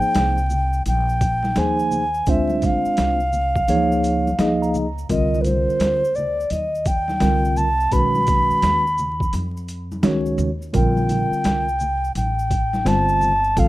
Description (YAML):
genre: hip hop, jazz-hop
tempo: 85 BPM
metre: 4/4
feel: swing 64% on 16ths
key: unclear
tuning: A4 = 440 Hz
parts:
  - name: breathy reedy alto ocarina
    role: melody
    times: 0.0-13.7 s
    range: B4 to B5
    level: -20 LUFS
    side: equal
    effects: plate reverb
  - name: mellow tine electric piano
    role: accompaniment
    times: 0.0-13.7 s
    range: D3 to A#5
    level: -22 LUFS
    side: equal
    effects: medium stereo tremolo, plate reverb
  - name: upright bass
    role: bass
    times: 0.0-13.7 s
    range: G1 to F2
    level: -24 LUFS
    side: equal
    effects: none
  - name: maracas and congas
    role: percussion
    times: 0.0-13.7 s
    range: none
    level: -32 LUFS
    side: left 1 dB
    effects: none
  - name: boom bap sampler-style drum kit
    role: drums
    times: 0.1-13.7 s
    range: hi-hat, kick drum, shaker, snare drum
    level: -23 LUFS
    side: equal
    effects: overdrive
room: moderate studio reverb, RT60 0.7 s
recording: rough home demo mix, vinyl crackle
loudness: -17 LUFS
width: side -17 dB against mid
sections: 0.0-13.7 A section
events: tine electric piano fill 4.0-5.1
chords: 0.0 Abmaj9; 2.3 Dm7b5; 3.7 C#69; 5.1 Cm9; 7.9 B; 10.7 Bbmaj9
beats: 0.16 0.86 1.57 | 2.27 2.98 3.69 4.39 | 5.10 5.80 6.51 7.21 | 7.92 8.63 9.33 10.04 | 10.74 11.45 12.16 12.86 | 13.57